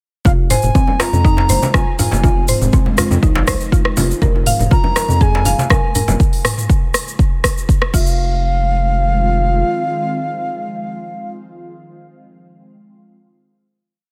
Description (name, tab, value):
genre	afro house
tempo	121 BPM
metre	4/4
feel	straight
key	F minor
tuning	A4 = 440 Hz
part	congas	percussion	0.2-6.2 s	none	-24 LUFS	equal	none
part	bright reedy bass bansuri	melody	0.3-11.3 s	F5 to Bb5	-24 LUFS	equal	vintage 12-bit sampler grit, dub echo
part	ethereal airy pad	sustained chords	1.1-11.3 s	Db3 to F4	-29 LUFS	equal	ensemble chorus, built-in reverb, phaser, sidechain pumping
part	mallet-like synth pluck	arpeggios	0.3-8.4 s	C4 to F5	-25 LUFS	equal	chorus, cassette tape, sidechain pumping, dub echo
part	round analog bass	bass	0.3-9.6 s	F1 to F2	-20 LUFS	equal	sidechain pumping
part	electronic kick drum	drums	0.3-8.0 s	none	-17 LUFS	equal	small room ambience
part	djembe	percussion	0.3-6.2 s	none	-26 LUFS	equal	none
part	egg shaker	percussion	0.3-8.2 s	none	-30 LUFS	equal	none
part	afro-pop drum kit	drums	0.5-8.0 s	crash cymbal, hi-hat, rim click, toms	-22 LUFS	equal	small room ambience
room	small room reverb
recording	none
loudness	-15 LUFS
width	mono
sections	0.3-8.2 drop; 8.2-12.2 final hit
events	drop 0.3-8.2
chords	0.3 Fm7; 4.2 Bbm7/F; 7.9 Fm7